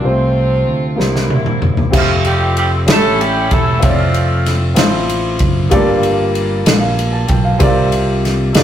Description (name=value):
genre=slow gospel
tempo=64 BPM (dotted quarters)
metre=6/8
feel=straight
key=F major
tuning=A4 = 440 Hz
part: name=breathy tenor saxophone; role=melody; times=0.0-1.0 s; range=C4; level=-18 LUFS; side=right 1 dB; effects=none
part: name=warm grand piano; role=accompaniment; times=0.0-8.6 s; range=G2 to A5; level=-17 LUFS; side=left 1 dB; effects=none
part: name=warm studio string section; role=sustained chords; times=0.0-1.9 s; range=F3 to F4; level=-26 LUFS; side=equal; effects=none
part: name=fingered electric bass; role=bass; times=0.0-8.6 s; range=Eb1 to D2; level=-17 LUFS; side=equal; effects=none
part: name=natural country drum kit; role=drums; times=1.0-8.6 s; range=crash cymbal, kick drum, ride cymbal, snare drum, toms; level=-16 LUFS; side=equal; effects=none
part: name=clear horn section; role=melody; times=2.0-4.7 s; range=F3 to A4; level=-16 LUFS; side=right 2 dB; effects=none
room=moderate stone room reverb, RT60 1.2 s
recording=rough rehearsal-room recording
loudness=-11 LUFS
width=side -10 dB against mid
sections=0.0-1.9 A section; 1.9-8.6 B section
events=drum fill 1.0-1.9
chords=0.0 F/C; 1.0 C7; 1.9 Fmaj9; 2.9 A7; 3.8 Dm9/F; 5.7 Gm9; 7.6 C9sus4